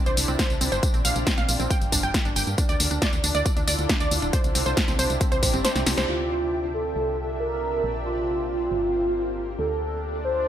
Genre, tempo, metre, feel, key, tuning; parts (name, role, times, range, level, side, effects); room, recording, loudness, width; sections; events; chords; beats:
uplifting trance; 137 BPM; 4/4; straight; D minor; A4 = 440 Hz
shimmering ambient pad; sustained chords; 0.0-10.5 s; C3 to E5; -32 LUFS; left 1 dB; chorus, built-in reverb, sidechain pumping
wide unison pluck; arpeggios; 0.1-6.1 s; C4 to G5; -28 LUFS; right 2 dB; sidechain pumping, digital delay
solid FM bass; bass; 0.1-10.5 s; D1 to G2; -29 LUFS; equal; sidechain pumping
punchy analog drum machine; drums; 0.1-6.2 s; crash cymbal, hi-hat, snare drum, tambourine; -26 LUFS; left 1 dB; overdrive, low-pass filter on hats, low-pass filter on snare, low-pass filter on perc, low-pass filter on cymbals
electronic kick drum; drums; 0.4-5.5 s; -24 LUFS; equal
warm velvety synth lead; second line; 6.1-10.5 s; F4 to C5; -25 LUFS; right 1 dB; chorus, digital delay
light reverb; -21 LUFS; side -10 dB against mid
0.0-6.1 A section; 6.1-10.5 B section
kick drops out 5.6-6.1; drum fill 5.6-6.1; band accent 6.0
0.0 Cadd9; 0.8 Bbsus2; 1.7 Gm; 2.6 Dmadd9; 4.3 Cadd9; 6.1 Dmadd9; 7.0 Cadd9; 7.8 Bbsus2; 8.7 Gm; 9.6 Dmadd9
0.39 | 0.83 1.27 1.71 2.14 | 2.58 3.02 3.46 3.90 | 4.33 4.77 5.21 5.65 | 6.08 6.52 6.96 7.40 | 7.84 8.27 8.71 9.15 | 9.59 10.03 10.46